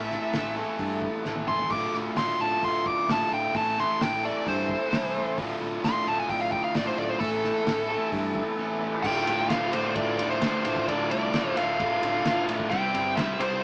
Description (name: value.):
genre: classic rock.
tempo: 131 BPM.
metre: 4/4.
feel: straight.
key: D minor.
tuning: A4 = 440 Hz.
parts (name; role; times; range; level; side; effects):
nasal lead guitar with a parked wah; melody; 0.0-13.6 s; A4 to D6; -30 LUFS; equal; overdrive.
tonewheel organ; sustained chords; 0.0-13.6 s; A3 to E5; -41 LUFS; equal; none.
overdriven electric guitar; riff; 0.0-13.6 s; D2 to C5; -35 LUFS; equal; none.
overdriven semi-hollow guitar; riff; 0.0-13.6 s; D2 to C5; -34 LUFS; equal; none.
fingered electric bass; bass; 0.0-13.6 s; D1 to G2; -40 LUFS; equal; none.
cloth-damped thuddy drum kit; drums; 0.1-13.5 s; crash cymbal, hi-hat, kick drum, ride cymbal, snare drum, toms; -36 LUFS; equal; none.
crunchy overdriven guitar; riff; 9.0-13.6 s; D2 to C4; -35 LUFS; equal; none.
room: moderate studio reverb, RT60 0.5 s.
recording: band playing live in one room, small speaker sound.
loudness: -27 LUFS.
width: mono.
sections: 0.0-9.0 A section; 9.0-13.6 B section.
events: lead electric guitar solo 0.0-9.0; drum fill 1.3-1.7.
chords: 0.0 Am; 1.7 Dm; 3.6 Am; 5.4 Dm; 7.2 Am; 9.0 Dm; 12.7 C.